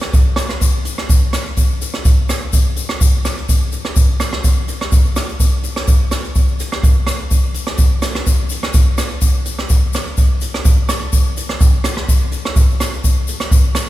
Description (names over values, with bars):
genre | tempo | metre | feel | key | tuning
calypso | 126 BPM | 4/4 | straight | none | none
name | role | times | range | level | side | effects
jazz brush drum kit | drums | 0.0-13.9 s | hi-hat, kick drum, rim click | -13 LUFS | equal | none
egg shaker | percussion | 0.1-13.9 s | none | -26 LUFS | left 7 dB | none
room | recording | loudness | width
moderate church reverb, RT60 3.6 s | recorded in a church or concert hall | -13 LUFS | side -15 dB against mid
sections
0.0-13.9 A section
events
none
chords
none